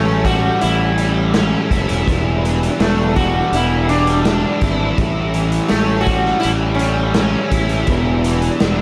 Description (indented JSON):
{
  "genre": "psychedelic rock",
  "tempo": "82 BPM",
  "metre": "4/4",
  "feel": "straight",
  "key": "unclear",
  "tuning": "A4 = 439 Hz",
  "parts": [
    { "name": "sitar", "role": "melody", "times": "0.0-7.5 s", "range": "A3 to F#4", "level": "-24 LUFS", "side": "equal", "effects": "tape echo" },
    { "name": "mellow tonewheel organ", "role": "sustained chords", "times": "0.0-8.8 s", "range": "G3 to E5", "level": "-29 LUFS", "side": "equal", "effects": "slow rotary speaker, chorus vibrato" },
    { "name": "cranked stack guitar", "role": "riff", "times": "0.0-8.8 s", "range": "E2 to E4", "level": "-23 LUFS", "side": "equal", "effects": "overdrive, flanger" },
    { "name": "fuzz fingered electric bass", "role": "bass", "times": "0.0-8.8 s", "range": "E1 to A1", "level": "-21 LUFS", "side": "equal", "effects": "overdrive" },
    { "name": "raw garage drum kit", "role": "drums", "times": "0.2-8.8 s", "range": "hi-hat, kick drum, snare drum", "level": "-22 LUFS", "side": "equal", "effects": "none" }
  ],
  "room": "little or no reverb",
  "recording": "none",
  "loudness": "-16 LUFS",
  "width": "mono",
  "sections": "0.0-8.8 A section",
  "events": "none",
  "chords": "0.0 A7; 2.1 Em7; 5.0 A7; 7.9 Em7",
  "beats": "0.61 1.34 | 2.07 2.80 3.52 4.25 | 4.98 5.71 6.43 7.16 | 7.88 8.61"
}